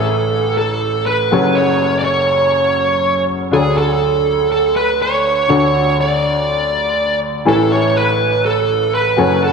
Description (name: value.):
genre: pop.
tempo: 122 BPM.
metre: 4/4.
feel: straight.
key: A major.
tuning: A4 = 439 Hz.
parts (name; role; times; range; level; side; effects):
smooth overdriven lead guitar; melody; 0.0-9.5 s; G#4 to D5; -15 LUFS; right 3 dB; ping-pong delay.
clear concert grand piano; accompaniment; 0.0-9.5 s; F#1 to G#5; -17 LUFS; left 2 dB; lush chorus.
room: wet plate reverb, RT60 2.7 s.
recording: dreamy mix soaked in reverb, nothing above 10.6 kHz.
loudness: -13 LUFS.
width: side -5 dB against mid.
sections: 0.0-9.5 A section.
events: none.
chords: 0.0 Amaj7; 1.3 F#madd9; 3.5 Dmaj7; 7.5 Amaj7.